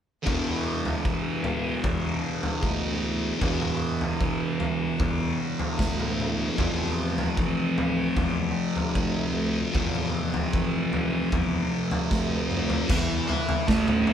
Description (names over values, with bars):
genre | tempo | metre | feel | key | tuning
psychedelic rock | 76 BPM | 4/4 | straight | unclear | A4 = 440 Hz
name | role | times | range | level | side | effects
thick fuzz guitar | riff | 0.2-14.1 s | E2 to E4 | -26 LUFS | equal | distortion, phaser
fuzz fingered electric bass | bass | 0.3-14.1 s | D2 to E3 | -31 LUFS | equal | overdrive
raw garage drum kit | drums | 0.3-14.1 s | crash cymbal, kick drum, snare drum, toms | -29 LUFS | equal | none
room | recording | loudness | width
light reverb | band playing live in one room | -24 LUFS | side -9 dB against mid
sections
0.3-12.9 A section; 12.9-14.1 B section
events
drum fill 12.1-12.9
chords
0.3 E5; 6.6 F5; 12.9 Esus4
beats
| 0.26 1.05 1.84 2.63 | 3.42 4.21 5.00 5.79 | 6.58 7.37 8.16 8.95 | 9.74 10.53 11.32 12.11 | 12.89 13.68